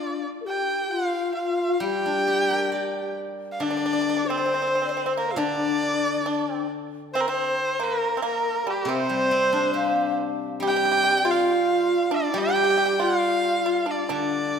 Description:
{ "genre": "chinese traditional, Chinese chamber ensemble", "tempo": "68 BPM", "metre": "4/4", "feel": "rubato", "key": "G yu mode", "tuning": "A4 = 440 Hz", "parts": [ { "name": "clear erhu", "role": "melody", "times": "0.0-14.6 s", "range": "G4 to G5", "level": "-25 LUFS", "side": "right 1 dB", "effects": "none" }, { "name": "breathy bright low xiao", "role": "second line", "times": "0.0-14.6 s", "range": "D4 to F5", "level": "-25 LUFS", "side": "left 2 dB", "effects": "none" }, { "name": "steel-string zither", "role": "accompaniment", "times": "1.8-14.6 s", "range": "C3 to D5", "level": "-30 LUFS", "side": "left 4 dB", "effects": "none" }, { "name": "pipa", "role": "second line", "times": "3.6-14.6 s", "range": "G3 to G4", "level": "-30 LUFS", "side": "right 6 dB", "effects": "none" } ], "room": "wet concert hall reverb, RT60 2.1 s", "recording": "none", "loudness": "-21 LUFS", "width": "side -7 dB against mid", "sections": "0.0-3.6 A section; 3.6-14.6 B section", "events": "none", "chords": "none" }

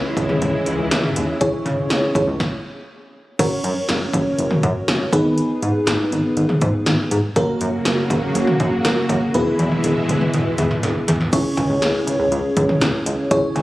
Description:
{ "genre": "synth-pop", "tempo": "121 BPM", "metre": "4/4", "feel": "straight", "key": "C# dorian", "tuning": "A4 = 440 Hz", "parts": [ { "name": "FM electric piano with soft pad layer", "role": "accompaniment", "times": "0.0-13.6 s", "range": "A#3 to C#5", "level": "-21 LUFS", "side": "equal", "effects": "chorus" }, { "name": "string machine, violas", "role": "sustained chords", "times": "0.0-2.4, 7.4-11.3 s", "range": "B2 to F#4", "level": "-24 LUFS", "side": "equal", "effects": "ensemble chorus" }, { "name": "chorused synth bass", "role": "bass", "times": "0.2-13.6 s", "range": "E1 to C#3", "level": "-21 LUFS", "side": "equal", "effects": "none" }, { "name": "80s electronic pad drums", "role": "drums", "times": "0.2-13.6 s", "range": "cowbell, crash cymbal, hi-hat, kick drum, snare drum, toms", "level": "-22 LUFS", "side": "equal", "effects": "gated reverb on snare and toms" } ], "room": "moderate lush hall reverb, RT60 2.3 s", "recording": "recorded on a phone in the room, club reverb, compression", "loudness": "-17 LUFS", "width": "side -17 dB against mid", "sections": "0.0-3.4 A section; 3.4-11.3 B section; 11.3-13.6 C section", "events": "stop 2.4-3.4; drum fill 9.3-11.3", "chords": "0.0 C#m; 3.4 F#; 5.1 G#m; 7.4 F#; 9.3 E; 11.3 C#m" }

